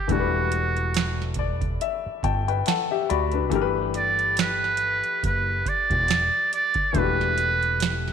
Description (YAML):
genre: R&B, neo-soul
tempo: 70 BPM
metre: 4/4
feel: swing 56% on 16ths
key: unclear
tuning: A4 = 440 Hz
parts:
  - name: trumpet with metal mute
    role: melody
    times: 0.0-8.1 s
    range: F#4 to D5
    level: -23 LUFS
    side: right 3 dB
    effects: slapback echo
  - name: clear baby grand piano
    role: accompaniment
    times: 0.0-8.1 s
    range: E3 to B5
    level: -27 LUFS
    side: left 12 dB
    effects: none
  - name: fretless electric bass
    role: bass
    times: 0.1-8.1 s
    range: E1 to D2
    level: -28 LUFS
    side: right 1 dB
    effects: ensemble chorus
  - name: booming analog drum machine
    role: drums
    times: 0.1-8.1 s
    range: hi-hat, kick drum, snare drum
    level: -28 LUFS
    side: right 4 dB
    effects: none
room: light reverb, small room reverb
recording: 1960s-style stereo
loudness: -21 LUFS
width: side -7 dB against mid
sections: 0.0-8.1 A section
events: grand piano fill 0.9-3.5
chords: 0.1 Em9; 3.5 Gadd9; 6.9 Em7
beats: | 0.09 0.95 1.80 2.66 | 3.52 4.37 5.23 6.09 | 6.95 7.80